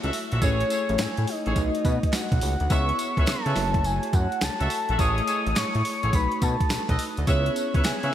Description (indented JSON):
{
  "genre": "R&B, new jack swing",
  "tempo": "105 BPM",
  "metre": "4/4",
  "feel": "swing 65% on 16ths",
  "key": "C# minor",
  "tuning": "A4 = 440 Hz",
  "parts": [
    { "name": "soft octave-layered synth lead", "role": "melody", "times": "0.0-8.1 s", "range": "C#5 to D#6", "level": "-28 LUFS", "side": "left 1 dB", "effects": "chorus, phaser, diffuse ambient delay" },
    { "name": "mellow tine electric piano", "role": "accompaniment", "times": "0.0-8.1 s", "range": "A3 to C#5", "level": "-32 LUFS", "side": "left 1 dB", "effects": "medium stereo tremolo" },
    { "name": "warm horn section", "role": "stabs", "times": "0.0-8.1 s", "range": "F#4 to E5", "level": "-32 LUFS", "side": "equal", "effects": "none" },
    { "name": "fat analog bass", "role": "bass", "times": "0.0-8.1 s", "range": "F#1 to C#3", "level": "-26 LUFS", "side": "equal", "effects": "none" },
    { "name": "crisp 8-bit digital drum machine", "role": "drums", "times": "0.0-8.1 s", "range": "hi-hat, kick drum, snare drum, tambourine", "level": "-27 LUFS", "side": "equal", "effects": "overdrive" },
    { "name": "group handclap", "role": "percussion", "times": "1.0-8.0 s", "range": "none", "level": "-46 LUFS", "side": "right 6 dB", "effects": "none" }
  ],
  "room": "moderate lush hall reverb, RT60 2.8 s",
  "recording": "dreamy mix soaked in reverb",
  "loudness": "-22 LUFS",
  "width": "side -11 dB against mid",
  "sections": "0.0-8.1 A section",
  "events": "none",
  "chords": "0.4 Amaj7; 1.6 B7; 2.7 C#m7; 3.6 F#m7; 5.0 Amaj7; 6.1 B7; 7.3 C#m7"
}